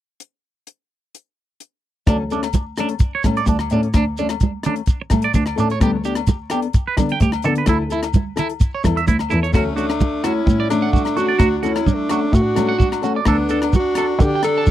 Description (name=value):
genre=highlife guitar band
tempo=129 BPM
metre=4/4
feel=straight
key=D major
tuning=A4 = 441 Hz
part: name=tight funk drum kit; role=drums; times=0.2-14.7 s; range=crash cymbal, hi-hat, kick drum, rim click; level=-19 LUFS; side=equal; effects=none
part: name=fingerpicked steel-string acoustic guitar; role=accompaniment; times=2.1-14.6 s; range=F#3 to A4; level=-23 LUFS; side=left 6 dB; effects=none
part: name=twangy electric guitar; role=arpeggios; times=2.1-14.6 s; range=D4 to A5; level=-24 LUFS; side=right 8 dB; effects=phaser, tape echo
part: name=warm cello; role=bass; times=2.1-14.7 s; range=D2 to D3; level=-22 LUFS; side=equal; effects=none
part: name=agogo bells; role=percussion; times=2.1-14.6 s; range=none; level=-30 LUFS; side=left 28 dB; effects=none
part: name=congas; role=percussion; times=2.1-14.7 s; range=none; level=-24 LUFS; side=right 6 dB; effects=none
part: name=shekere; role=percussion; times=2.1-14.7 s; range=none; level=-22 LUFS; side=right 2 dB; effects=none
part: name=breathy alto saxophone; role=melody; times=9.6-14.7 s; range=C#4 to A4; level=-20 LUFS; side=right 2 dB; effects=tape echo
part: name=growling tenor saxophone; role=second line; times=9.6-14.7 s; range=A3 to D4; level=-27 LUFS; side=left 14 dB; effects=none
room=little or no reverb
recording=dry, close 1970s-style studio recording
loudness=-16 LUFS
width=side -12 dB against mid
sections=0.2-2.1 A section; 2.1-9.5 B section; 9.5-14.7 C section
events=none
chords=0.2 N.C.; 2.1 Dmaj7(no3); 5.8 Gadd9/D; 7.7 A5/D; 9.5 Dmaj7; 13.3 Gadd9/D (rootless)